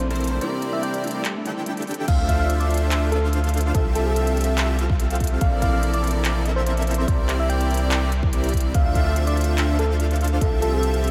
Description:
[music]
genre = future bass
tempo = 144 BPM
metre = 4/4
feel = half-time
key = D minor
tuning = A4 = 440 Hz
[part]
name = soft struck synth lead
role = melody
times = 0.0-11.0 s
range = A4 to G5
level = -31 LUFS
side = equal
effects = chorus, sidechain pumping, tape echo
[part]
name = felt-muted upright piano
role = accompaniment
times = 0.0-1.8 s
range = G3 to E4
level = -36 LUFS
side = equal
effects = analog chorus, sidechain pumping, tape echo
[part]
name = saturated sub bass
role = bass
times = 0.0-11.1 s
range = Bb1 to D2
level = -24 LUFS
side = equal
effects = sidechain pumping
[part]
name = trap drum kit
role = drums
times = 0.0-11.1 s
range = crash cymbal, handclaps, hi-hat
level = -34 LUFS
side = equal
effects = small room reverb
[part]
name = airy dreamy lead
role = arpeggios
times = 0.1-11.1 s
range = C5 to G5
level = -35 LUFS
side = equal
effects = chorus, sidechain pumping
[part]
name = dense compressed supersaw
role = riff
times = 0.1-11.1 s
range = C4 to G5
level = -29 LUFS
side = equal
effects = sidechain pumping, tape echo
[part]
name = electronic kick drum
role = drums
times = 2.1-10.5 s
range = none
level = -24 LUFS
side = equal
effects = small room reverb
[sound]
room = moderate huge ambient reverb, RT60 8.3 s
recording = dreamy mix soaked in reverb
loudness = -22 LUFS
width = mono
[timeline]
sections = 0.0-2.1 A section; 2.1-11.1 A section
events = drop 0.0-2.1, 2.1-11.1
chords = 0.4 C9; 1.2 A7sus4; 2.1 Dm9; 3.7 Fmaj9/C; 5.4 Bbmaj9#11; 7.1 C9; 8.7 Dm9; 10.4 Fmaj9/C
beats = 0.00 | 0.41 0.83 1.25 1.66 | 2.08 2.50 2.91 3.33 | 3.75 4.16 4.58 5.00 | 5.41 5.83 6.25 6.66 | 7.08 7.50 7.91 8.33 | 8.75 9.16 9.58 10.00 | 10.41 10.83

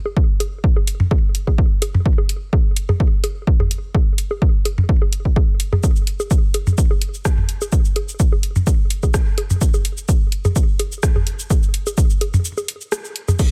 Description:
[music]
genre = techno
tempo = 127 BPM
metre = 4/4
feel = swing 54% on 16ths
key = none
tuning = none
[part]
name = electronic bongos and toms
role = percussion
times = 0.1-13.5 s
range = none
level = -23 LUFS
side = equal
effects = delay
[part]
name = electronic kick drum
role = drums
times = 0.2-13.5 s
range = none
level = -19 LUFS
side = equal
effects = none
[part]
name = punchy analog drum machine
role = drums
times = 0.4-13.5 s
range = cabasa, crash cymbal, hi-hat, rim click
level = -28 LUFS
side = equal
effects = none
[sound]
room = digital ambience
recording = none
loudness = -18 LUFS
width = mono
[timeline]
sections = 0.0-13.4 A section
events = break 12.4-13.4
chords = none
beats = | 0.17 0.64 1.11 1.58 | 2.06 2.53 3.00 3.47 | 3.94 4.42 4.89 5.36 | 5.83 6.31 6.78 7.25 | 7.72 8.20 8.67 9.14 | 9.61 10.09 10.56 11.03 | 11.50 11.98 12.45 12.92 | 13.39

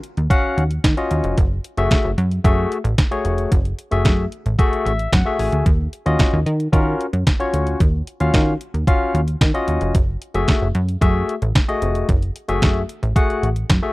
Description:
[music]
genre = early-eighties boogie funk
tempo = 112 BPM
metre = 4/4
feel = straight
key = unclear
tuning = A4 = 440 Hz
[part]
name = detuned 8-bit digital drum machine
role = drums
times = 0.0-13.8 s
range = handclaps, hi-hat, kick drum, snare drum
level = -17 LUFS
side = equal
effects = overdrive
[part]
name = plucky analog bass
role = bass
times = 0.2-13.8 s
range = F1 to Eb3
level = -20 LUFS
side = equal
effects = none
[part]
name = barky tine electric piano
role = accompaniment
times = 0.3-13.9 s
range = A3 to Ab5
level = -22 LUFS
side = left 2 dB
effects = overdrive
[sound]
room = little or no reverb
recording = dry, close 1970s-style studio recording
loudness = -16 LUFS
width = side -20 dB against mid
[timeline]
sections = 0.0-13.9 A section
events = tine electric piano fill 4.6-5.7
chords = 0.0 Ebm9; 1.4 Gbm9; 5.7 Ebm9; 9.9 Gbm9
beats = 0.30 0.84 | 1.38 1.91 2.45 2.98 | 3.52 4.05 4.59 5.12 | 5.66 6.20 6.73 7.27 | 7.80 8.34 8.88 9.41 | 9.95 10.48 11.02 11.55 | 12.09 12.62 13.16 13.70

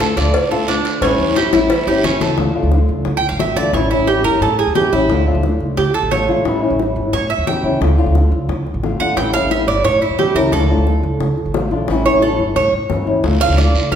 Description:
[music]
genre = latin, Cuban son and guajira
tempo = 177 BPM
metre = 4/4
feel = straight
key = D harmonic minor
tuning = A4 = 435 Hz
[part]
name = flamenco guitar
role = accompaniment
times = 0.0-14.0 s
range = D3 to F4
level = -19 LUFS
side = left 3 dB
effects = none
[part]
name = Cuban tres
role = arpeggios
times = 0.0-14.0 s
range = C#4 to G5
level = -18 LUFS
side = right 4 dB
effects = none
[part]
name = cowbell and bongos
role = percussion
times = 0.0-14.0 s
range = none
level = -23 LUFS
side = left 3 dB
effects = none
[part]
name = guiro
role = percussion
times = 0.0-2.4, 13.2-14.0 s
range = none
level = -27 LUFS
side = right 3 dB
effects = none
[part]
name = upright bass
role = bass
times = 0.2-14.0 s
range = G1 to D3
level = -19 LUFS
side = right 1 dB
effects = none
[sound]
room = wet recital hall reverb, RT60 1.3 s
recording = recorded in a church or concert hall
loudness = -13 LUFS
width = side -8 dB against mid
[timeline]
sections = 0.0-2.4 A section; 2.4-14.0 B section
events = drum fill 1.4-2.4; Cuban tres solo 2.4-14.0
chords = 0.0 Dm; 1.0 A7; 2.4 Dm; 3.7 A7; 5.1 Dm; 6.5 A7; 7.8 Dm; 9.2 A7; 10.5 Dm; 11.9 A7; 13.2 Dm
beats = 0.01 0.35 0.69 | 1.02 1.36 1.70 2.04 | 2.38 2.72 3.06 3.40 | 3.74 4.08 4.42 4.76 | 5.10 5.44 5.78 6.12 | 6.46 6.79 7.13 7.47 | 7.81 8.15 8.49 8.83 | 9.17 9.51 9.85 10.19 | 10.53 10.87 11.21 11.55 | 11.89 12.22 12.56 12.90 | 13.24 13.58 13.92

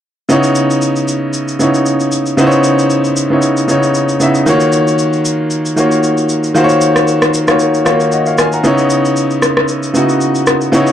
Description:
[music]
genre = amapiano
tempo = 115 BPM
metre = 4/4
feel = swing 55% on 16ths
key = C# dorian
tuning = A4 = 440 Hz
[part]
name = clear baby grand piano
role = accompaniment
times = 0.3-10.9 s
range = C#3 to A#5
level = -11 LUFS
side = equal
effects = none
[part]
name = electronic shaker and rim click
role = drums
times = 0.3-10.9 s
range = none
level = -18 LUFS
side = left 1 dB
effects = vintage 12-bit sampler grit
[sound]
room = light reverb, digital ambience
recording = dark, warm production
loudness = -10 LUFS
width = side -10 dB against mid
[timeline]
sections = 0.3-10.9 A section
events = none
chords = 0.3 C#m9; 4.5 D#m9; 8.6 C#m9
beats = | 0.29 0.82 1.34 1.86 | 2.38 2.90 3.42 3.95 | 4.47 4.99 5.51 6.03 | 6.56 7.08 7.60 8.12 | 8.64 9.16 9.69 10.21 | 10.73

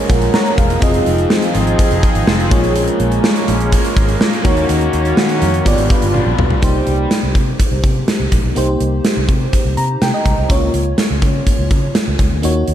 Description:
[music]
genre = 1980s-style pop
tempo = 124 BPM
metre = 4/4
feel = straight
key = Bb minor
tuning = A4 = 440 Hz
[part]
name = FM electric piano with soft pad layer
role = accompaniment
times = 0.0-12.7 s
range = Bb3 to Bb5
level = -19 LUFS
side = equal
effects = chorus
[part]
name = distorted electric guitar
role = accompaniment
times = 0.0-7.1 s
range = G2 to F4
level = -24 LUFS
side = equal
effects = distortion, lush chorus
[part]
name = sweeping resonant pad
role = sustained chords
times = 0.0-6.6 s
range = Eb3 to B4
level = -20 LUFS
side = equal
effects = chorus
[part]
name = vintage muted fingered electric bass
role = bass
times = 0.1-12.7 s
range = E1 to Db3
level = -18 LUFS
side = equal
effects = none
[part]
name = gated 80s drum kit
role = drums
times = 0.1-12.7 s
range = hi-hat, kick drum, snare drum, toms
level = -15 LUFS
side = equal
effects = none
[sound]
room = moderate recital hall reverb, RT60 1.4 s, small room ambience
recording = dark, warm production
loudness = -12 LUFS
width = side -10 dB against mid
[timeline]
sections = 0.0-6.6 A section; 6.6-12.7 B section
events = drum fill 6.1-6.6; FM electric piano fill 9.5-10.5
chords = 0.0 Bbm7; 0.8 Fm7; 2.5 Bbm7; 4.5 Ebm7; 5.7 G7; 6.6 Cm7; 10.5 Bbm/Db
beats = 0.34 | 0.82 1.30 1.79 2.27 | 2.76 3.24 3.72 4.21 | 4.69 5.18 5.66 6.14 | 6.63 7.11 7.59 8.08 | 8.56 9.05 9.53 10.01 | 10.50 10.98 11.47 11.95 | 12.43

